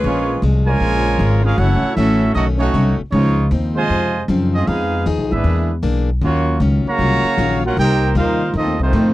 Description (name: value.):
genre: jazz, big band swing.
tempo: 155 BPM.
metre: 4/4.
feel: swing 64% on 8ths.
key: Bb minor.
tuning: A4 = 441 Hz.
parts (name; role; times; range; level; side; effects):
mellow trombone section; second line; 0.0-9.1 s; C3 to G4; -22 LUFS; right 2 dB; none.
picked plugged-in steel-string acoustic guitar; accompaniment; 0.0-9.1 s; F2 to Ab4; -24 LUFS; left 4 dB; none.
upright bass; bass; 0.0-9.1 s; Gb1 to A2; -17 LUFS; equal; none.
warm trumpet section; melody; 0.1-9.1 s; Ab3 to Bb5; -20 LUFS; right 2 dB; none.
room: little or no reverb.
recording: dry, close 1970s-style studio recording.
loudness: -14 LUFS.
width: side -16 dB against mid.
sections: 0.0-9.1 A section.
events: none.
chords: 0.0 Bbm7; 1.6 Gbm7; 2.4 B9; 3.1 Dbmaj9; 4.7 Fm7b5; 5.4 E7#11; 6.2 Ebm9; 7.8 Cm7; 8.5 F7.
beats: | 0.04 0.43 0.81 1.20 | 1.58 1.97 2.35 2.74 | 3.13 3.51 3.90 4.29 | 4.67 5.06 5.45 5.83 | 6.22 6.61 6.99 7.38 | 7.76 8.15 8.54 8.92.